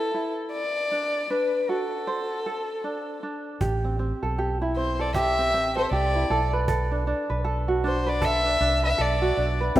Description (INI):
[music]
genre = acoustic pop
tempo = 78 BPM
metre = 4/4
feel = swing 60% on 16ths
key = unclear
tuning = A4 = 441 Hz
[part]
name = dark violin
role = melody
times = 0.0-9.6 s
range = A4 to E5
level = -26 LUFS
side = left 2 dB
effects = none
[part]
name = tenor ukulele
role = accompaniment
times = 0.0-9.8 s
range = C4 to C5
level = -28 LUFS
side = right 2 dB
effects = none
[part]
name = fingered electric bass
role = bass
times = 3.6-9.8 s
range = A1 to C2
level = -27 LUFS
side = right 1 dB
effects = none
[part]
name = cajon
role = drums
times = 3.6-9.8 s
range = none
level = -31 LUFS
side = right 1 dB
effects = none
[part]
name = felt-muted upright piano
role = accompaniment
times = 9.8 s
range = C4 to B4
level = -16 LUFS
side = left 4 dB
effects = none
[sound]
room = moderate lush hall reverb, RT60 2.5 s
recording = rough home demo mix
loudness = -23 LUFS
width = side -14 dB against mid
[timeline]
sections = 0.0-3.6 A section; 3.6-9.8 B section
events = none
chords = 0.0 Emadd11; 0.5 D7; 3.6 Am7; 6.3 Bm7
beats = | 0.53 1.30 2.07 2.84 | 3.61 4.38 5.14 5.91 | 6.68 7.45 8.22 8.99 | 9.76